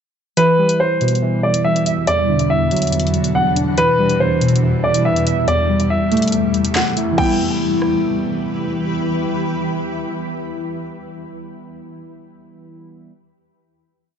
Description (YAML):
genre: hip hop, drill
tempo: 141 BPM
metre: 4/4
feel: half-time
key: E minor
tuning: A4 = 440 Hz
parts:
  - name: dark baby grand piano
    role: melody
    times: 0.4-8.4 s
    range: B4 to G5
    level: -18 LUFS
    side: equal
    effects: low-pass filter, ping-pong delay
  - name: warbly lo-fi synth keys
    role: accompaniment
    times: 0.4-13.1 s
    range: E2 to E5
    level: -19 LUFS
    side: equal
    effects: chorus, low-pass filter
  - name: granular cloud pad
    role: sustained chords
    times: 1.3-11.0 s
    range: E2 to B4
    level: -22 LUFS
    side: left 1 dB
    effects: built-in reverb
  - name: drill drum kit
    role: drums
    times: 0.4-7.9 s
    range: crash cymbal, handclaps, hi-hat, kick drum, rim click, snare drum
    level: -24 LUFS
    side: left 1 dB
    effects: none
room: moderate digital room reverb, RT60 1.0 s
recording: nothing above 8.0 kHz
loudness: -15 LUFS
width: side -8 dB against mid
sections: 0.4-7.2 breakdown; 7.2-10.6 final chord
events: none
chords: 0.4 Em; 2.1 Bm/E; 3.8 Em; 5.5 Am7/E; 7.2 Em